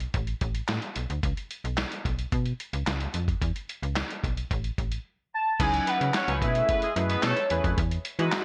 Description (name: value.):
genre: early-eighties boogie funk.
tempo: 110 BPM.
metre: 4/4.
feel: straight.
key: unclear.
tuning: A4 = 440 Hz.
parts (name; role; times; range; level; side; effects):
slap-like FM bass; bass; 0.0-8.3 s; A1 to E3; -32 LUFS; equal; none.
lo-fi sampler-style drum kit; drums; 0.0-8.4 s; crash cymbal, handclaps, hi-hat, kick drum, snare drum; -33 LUFS; equal; gated reverb.
warm velvety synth lead; melody; 5.3-7.6 s; C#5 to A5; -30 LUFS; equal; chorus.
clear horn section; second line; 5.6-7.5 s; G#3 to C#5; -34 LUFS; equal; none.
chorused polysynth; accompaniment; 5.6-8.4 s; F#3 to B4; -33 LUFS; equal; none.
room: digital ambience.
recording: none.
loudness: -28 LUFS.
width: mono.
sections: 0.0-5.6 A section; 5.6-8.4 B section.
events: none.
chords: 0.1 N.C.; 1.2 Bsus2; 3.4 E5; 4.5 N.C.; 5.6 C#m11; 6.4 B13sus4; 7.8 Emaj9.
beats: 0.14 0.69 | 1.23 1.78 2.32 2.87 | 3.41 3.96 4.50 5.05 | 5.59 6.14 6.69 7.23 | 7.78 8.32.